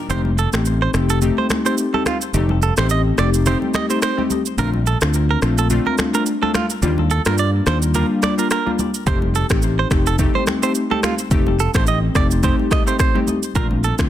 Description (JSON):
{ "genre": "afrobeats", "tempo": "107 BPM", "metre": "4/4", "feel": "swing 55% on 16ths", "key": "F mixolydian", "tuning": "A4 = 441 Hz", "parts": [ { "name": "glassy digital keys", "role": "accompaniment", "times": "0.1-14.1 s", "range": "G3 to G4", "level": "-21 LUFS", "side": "left 3 dB", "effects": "chorus" }, { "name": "direct-recorded clean electric guitar", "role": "riff", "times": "0.1-13.9 s", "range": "F4 to Eb5", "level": "-23 LUFS", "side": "right 7 dB", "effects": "ping-pong delay" }, { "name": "fingered electric bass", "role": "bass", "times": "0.1-14.1 s", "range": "F1 to G2", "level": "-18 LUFS", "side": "equal", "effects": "none" }, { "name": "afro-pop drum kit", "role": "drums", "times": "0.1-14.1 s", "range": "finger snaps, kick drum, rim click, shaker", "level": "-21 LUFS", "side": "equal", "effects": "soft clipping on snare" }, { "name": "congas", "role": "percussion", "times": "0.1-13.8 s", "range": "none", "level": "-28 LUFS", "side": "right 1 dB", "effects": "none" } ], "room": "digital ambience", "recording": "dense, heavily limited modern master", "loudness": "-16 LUFS", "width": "side -12 dB against mid", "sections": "0.1-14.1 A section", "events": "kick muted 0.1-9.1", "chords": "0.1 F7; 4.6 Bbmaj7; 6.8 Ebmaj7; 9.1 F7; 13.6 Bbmaj7" }